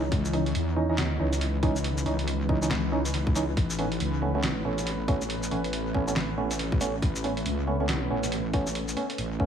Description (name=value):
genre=deep dubstep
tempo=139 BPM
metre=4/4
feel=swing 60% on 16ths, half-time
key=unclear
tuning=A4 = 444 Hz
part: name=deep dark ambient pad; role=sustained chords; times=0.0-9.5 s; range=E3 to B4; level=-32 LUFS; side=equal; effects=chorus, built-in reverb
part: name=percussive organ stab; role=stabs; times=0.0-9.5 s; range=E3 to D#4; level=-31 LUFS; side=right 3 dB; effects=chorus, dub echo
part: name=wobble bass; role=bass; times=0.0-9.5 s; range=A1 to E2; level=-30 LUFS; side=left 1 dB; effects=chorus
part: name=electronic kick drum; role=drums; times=0.1-9.5 s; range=none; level=-27 LUFS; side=equal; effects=none
part: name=trip hop sampler-style drum kit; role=drums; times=0.1-9.3 s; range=handclaps, hi-hat, shaker, snare drum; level=-33 LUFS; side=equal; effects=dub echo
room=light reverb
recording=echo-heavy mix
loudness=-25 LUFS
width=side -8 dB against mid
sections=0.0-9.5 A section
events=none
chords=0.0 C#madd9; 3.6 Aadd9